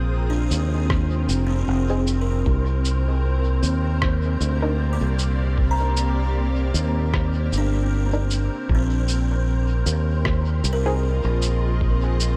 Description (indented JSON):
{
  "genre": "ambient dub",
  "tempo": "77 BPM",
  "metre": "4/4",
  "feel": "swing 56% on 16ths",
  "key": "C minor",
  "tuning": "A4 = 441 Hz",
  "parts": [
    { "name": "granular cloud pad", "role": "sustained chords", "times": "0.0-12.4 s", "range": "Bb3 to Eb6", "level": "-32 LUFS", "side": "equal", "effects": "built-in reverb, vintage 12-bit sampler grit" },
    { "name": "fingered electric bass", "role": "bass", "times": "0.0-12.4 s", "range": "F1 to Eb2", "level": "-23 LUFS", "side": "equal", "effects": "none" },
    { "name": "wind-like tuned noise texture", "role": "texture", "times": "0.0-12.4 s", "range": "C5", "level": "-38 LUFS", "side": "equal", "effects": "built-in reverb" },
    { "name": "buzzing kalimba", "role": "arpeggios", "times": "0.3-12.4 s", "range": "C4 to D6", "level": "-34 LUFS", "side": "equal", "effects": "dub echo" },
    { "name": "electronic cabasa and rim click", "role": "drums", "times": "0.5-12.4 s", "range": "none", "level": "-31 LUFS", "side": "equal", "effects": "dub echo" },
    { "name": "electronic kick drum", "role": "drums", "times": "0.9-12.0 s", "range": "none", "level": "-26 LUFS", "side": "equal", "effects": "none" },
    { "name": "filtered dub chord stab", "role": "stabs", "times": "1.9-11.0 s", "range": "C4 to Bb4", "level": "-36 LUFS", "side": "equal", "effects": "none" }
  ],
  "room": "light reverb, digital ambience",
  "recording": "none",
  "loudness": "-22 LUFS",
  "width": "mono",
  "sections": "0.0-12.4 A section",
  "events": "none",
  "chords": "0.0 Bb9sus4; 2.5 Cm9; 8.7 Bb9sus4",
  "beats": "0.12 0.90 1.68 | 2.46 3.24 4.02 4.80 | 5.58 6.36 7.14 7.92 | 8.69 9.47 10.25 11.03 | 11.81"
}